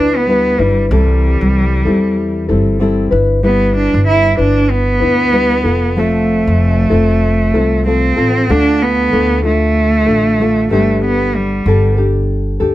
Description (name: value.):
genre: acoustic pop.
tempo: 95 BPM.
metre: 4/4.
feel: swing 60% on 16ths.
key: G mixolydian.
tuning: A4 = 440 Hz.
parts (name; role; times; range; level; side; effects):
warm cello; melody; 0.0-12.0 s; G3 to E4; -15 LUFS; right 2 dB; none.
nylon-string guitar; accompaniment; 0.0-12.7 s; C3 to B4; -16 LUFS; left 2 dB; none.
upright bass; bass; 0.0-12.7 s; F1 to E2; -16 LUFS; equal; none.
room: light reverb.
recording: none.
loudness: -11 LUFS.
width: side -15 dB against mid.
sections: 0.0-8.5 A section; 8.5-12.7 B section.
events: none.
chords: 0.0 G6; 0.9 C6; 3.1 G6; 5.7 F; 8.5 Dm; 10.7 Gadd9.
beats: 0.28 | 0.91 1.54 2.17 2.81 | 3.44 4.07 4.71 5.34 | 5.97 6.60 7.24 7.87 | 8.50 9.13 9.77 10.40 | 11.03 11.66 12.29.